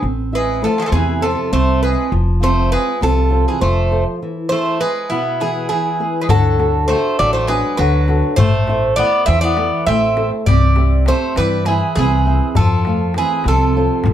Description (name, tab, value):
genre	greek folk, Greek bouzouki band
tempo	201 BPM (eighths)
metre	7/8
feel	straight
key	unclear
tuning	A4 = 440 Hz
part	flamenco guitar	accompaniment	0.0-14.1 s	B2 to G5	-21 LUFS	right 1 dB	none
part	upright bass	bass	0.0-14.1 s	F1 to G2	-17 LUFS	equal	none
part	Greek bouzouki	melody	0.4-14.1 s	E4 to E5	-19 LUFS	right 2 dB	plate reverb
part	Greek bouzouki	second line	0.4-14.1 s	E3 to C4	-22 LUFS	left 1 dB	none
part	darbuka	percussion	6.3-14.1 s	none	-18 LUFS	left 3 dB	none
room	moderate studio reverb, RT60 0.6 s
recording	dark, warm production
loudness	-14 LUFS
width	side -10 dB against mid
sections	0.0-6.3 A section; 6.3-14.1 B section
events	break 4.2-6.3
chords	0.0 Am; 2.1 F; 4.2 E; 6.3 D; 8.4 Am; 10.5 C; 12.6 F